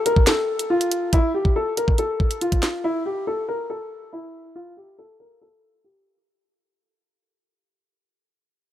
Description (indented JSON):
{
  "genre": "hip hop, drill",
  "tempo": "140 BPM",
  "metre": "4/4",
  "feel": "half-time",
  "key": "unclear",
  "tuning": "A4 = 440 Hz",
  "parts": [
    { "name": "dark grand piano", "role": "melody", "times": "0.1-6.2 s", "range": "E4 to Bb4", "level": "-23 LUFS", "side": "left 1 dB", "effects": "low-pass filter" },
    { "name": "drill drum kit", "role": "drums", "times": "0.1-2.7 s", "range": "handclaps, hi-hat, kick drum, snare drum", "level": "-19 LUFS", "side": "equal", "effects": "none" }
  ],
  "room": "little or no reverb",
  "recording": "none",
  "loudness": "-20 LUFS",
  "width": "side -12 dB against mid",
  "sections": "0.0-6.3 A section",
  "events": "fade-out 0.0-6.3; filter sweep on grand piano 0.0-6.3",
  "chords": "none"
}